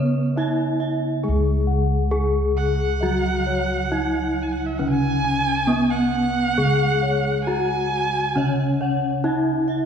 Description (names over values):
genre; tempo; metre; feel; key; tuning
Javanese gamelan; 67 BPM; 4/4; straight; C# slendro; A4 = 441 Hz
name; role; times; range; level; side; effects
gamelan-type bronze metallophone; melody; 0.0-9.9 s; B3-25c to G#4; -23 LUFS; left 1 dB; none
gamelan-type bronze metallophone; accompaniment; 0.0-9.9 s; C#3 to B3-25c; -28 LUFS; left 1 dB; none
gamelan-type bossed gongs; arpeggios; 0.0-9.7 s; B4-25c to G#5; -32 LUFS; left 5 dB; none
gamelan-type bronze metallophone; arpeggios; 0.0-1.2, 8.4-9.9 s; B4-25c to E5-45c; -32 LUFS; right 6 dB; none
gamelan-type bossed gongs; bass; 0.0-9.9 s; C#2 to G#4; -25 LUFS; equal; none
warm erhu; second line; 2.6-9.0 s; E5-44c to G#5; -25 LUFS; right 4 dB; slapback echo
room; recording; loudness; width
wet concert hall reverb, RT60 2.0 s; heard from further back in the room; -19 LUFS; side -7 dB against mid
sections
0.0-1.2 A section; 1.2-9.9 B section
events
none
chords
none